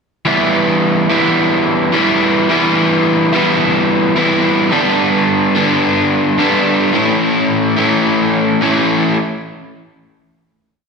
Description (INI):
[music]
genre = rock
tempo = 108 BPM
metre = 4/4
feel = straight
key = E dorian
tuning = A4 = 440 Hz
[part]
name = overdriven electric guitar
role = solo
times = 0.3-9.2 s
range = G2 to E4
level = -11 LUFS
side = equal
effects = slapback echo
[sound]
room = wet recital hall reverb, RT60 1.4 s, digital ambience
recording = big arena sound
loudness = -11 LUFS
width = side -5 dB against mid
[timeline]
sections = 0.3-9.2 A section; 9.2-10.9 final hit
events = none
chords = 0.3 Em; 4.7 G; 6.9 A; 9.2 N.C.